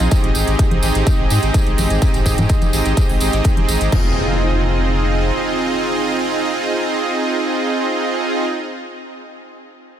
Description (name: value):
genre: progressive house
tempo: 126 BPM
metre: 4/4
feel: straight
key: F minor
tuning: A4 = 441 Hz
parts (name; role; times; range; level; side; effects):
- soft supersaw; stabs; 0.0-8.5 s; Ab2 to Eb5; -18 LUFS; right 2 dB; sidechain pumping, digital delay
- saturated sub bass; bass; 0.0-5.3 s; Eb1 to Ab2; -19 LUFS; equal; sidechain pumping
- big-room dance drum kit; drums; 0.0-4.0 s; crash cymbal, hi-hat; -30 LUFS; right 2 dB; none
- tambourine; percussion; 0.0-3.9 s; none; -29 LUFS; right 1 dB; none
- electronic kick drum; drums; 0.1-4.0 s; none; -16 LUFS; equal; none
- congas; percussion; 0.7-3.7 s; none; -25 LUFS; equal; sidechain pumping on perc
- impact; sound effects; 3.9-8.5 s; none; -27 LUFS; left 2 dB; none
room: little or no reverb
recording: none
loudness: -15 LUFS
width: side -10 dB against mid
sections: 0.0-3.9 A section; 3.9-7.7 B section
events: none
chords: 0.1 Abmaj7; 3.9 Fm7